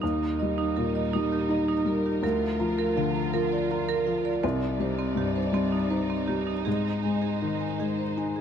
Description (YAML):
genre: neoclassical piano and strings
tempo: 54 BPM (dotted quarters)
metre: 6/8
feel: rubato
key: Eb major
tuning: A4 = 437 Hz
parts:
  - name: felt-muted upright piano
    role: accompaniment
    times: 0.0-8.4 s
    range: C2 to F4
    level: -27 LUFS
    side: left 3 dB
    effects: none
  - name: dark studio string section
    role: sustained chords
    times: 0.0-8.4 s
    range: F3 to D5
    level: -34 LUFS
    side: right 2 dB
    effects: none
  - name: marimba with medium hard mallets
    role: arpeggios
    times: 0.0-8.4 s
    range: C4 to Bb5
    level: -30 LUFS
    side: right 6 dB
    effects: tape echo
room: light reverb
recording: close, detailed microphones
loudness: -24 LUFS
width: side -8 dB against mid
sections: 0.0-8.4 A section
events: none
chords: 0.0 Eb; 2.2 Bb/D; 4.4 Cmadd9; 6.7 Ab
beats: | 0.01 1.13 | 2.23 3.33 | 4.43 5.54 | 6.66 7.79